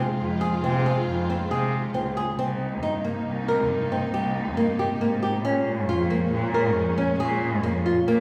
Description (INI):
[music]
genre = contemporary instrumental, chamber music in an uneven meter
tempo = 137 BPM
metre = 7/4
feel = straight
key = unclear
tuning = A4 = 439 Hz
[part]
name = warm symphonic string section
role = sustained chords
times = 0.0-8.2 s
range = Bb2 to F4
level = -33 LUFS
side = equal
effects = none
[part]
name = nylon-string guitar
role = arpeggios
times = 0.0-8.2 s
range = Bb3 to Bb4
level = -28 LUFS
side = equal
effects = none
[part]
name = rich cello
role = bass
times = 0.2-8.2 s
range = C2 to C3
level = -29 LUFS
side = equal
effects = none
[sound]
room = wet recital hall reverb, RT60 1.5 s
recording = heard from further back in the room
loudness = -25 LUFS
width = mono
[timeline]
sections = 0.0-2.4 A section; 2.4-8.2 B section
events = none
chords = 0.0 Fm7; 2.4 Cm7; 5.5 Bbm7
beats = 0.20 0.64 1.08 1.52 1.95 | 2.39 2.83 3.27 3.71 4.14 4.58 5.02 | 5.46 5.89 6.33 6.77 7.20 7.64 8.08